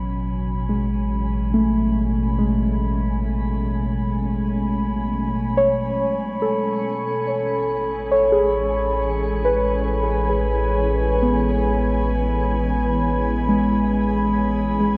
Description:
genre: ambient.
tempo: free time.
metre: none.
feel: none.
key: unclear.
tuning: A4 = 440 Hz.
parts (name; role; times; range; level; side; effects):
glassy FM pad; sustained chords; 0.0-15.0 s; B2 to G#5; -30 LUFS; equal; ensemble chorus, built-in reverb, shimmer reverb.
muted felt-like synth keys; arpeggios; 0.0-15.0 s; F#3 to C#5; -23 LUFS; equal; chorus, diffuse ambient delay, shimmer reverb.
round analog bass; bass; 0.0-15.0 s; A1; -27 LUFS; equal; none.
glass harmonica; texture; 0.0-15.0 s; B5; -33 LUFS; equal; shimmer reverb.
room: wet huge ambient reverb, RT60 8.2 s.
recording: cassette tape.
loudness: -21 LUFS.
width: mono.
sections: 0.0-15.0 A section.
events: fade-in on ambient pad 0.0-15.0; fade-in on glass harmonica 0.0-15.0.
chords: 0.0 Amaj9; 6.8 C#m/A.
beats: free time.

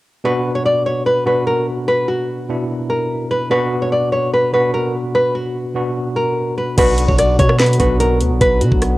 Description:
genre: hip hop, trap.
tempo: 147 BPM.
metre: 4/4.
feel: half-time.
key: B harmonic minor.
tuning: A4 = 440 Hz.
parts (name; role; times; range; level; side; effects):
nylon-string guitar; melody; 0.2-9.0 s; F#4 to D5; -17 LUFS; equal; cassette tape.
tine electric piano; accompaniment; 0.2-9.0 s; B2 to F#4; -20 LUFS; equal; overdrive, fast stereo tremolo, cassette tape.
mellow French horn section; sustained chords; 6.8-9.0 s; D3 to B3; -26 LUFS; left 1 dB; cassette tape.
long sustained 808-style bass; bass; 6.8-9.0 s; B1 to B2; -17 LUFS; equal; none.
trap drum kit; drums; 6.8-8.9 s; crash cymbal, hi-hat, kick drum, rim click, snare drum; -17 LUFS; equal; cassette tape.
room: little or no reverb.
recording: home recording on cassette.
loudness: -14 LUFS.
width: side -18 dB against mid.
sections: 0.2-6.8 A section; 6.8-9.0 B section.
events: none.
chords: 0.2 Bm.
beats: | 0.25 0.66 1.06 1.47 | 1.88 2.29 2.70 3.10 | 3.51 3.92 4.33 4.74 | 5.14 5.55 5.96 6.37 | 6.78 7.19 7.59 8.00 | 8.41 8.82.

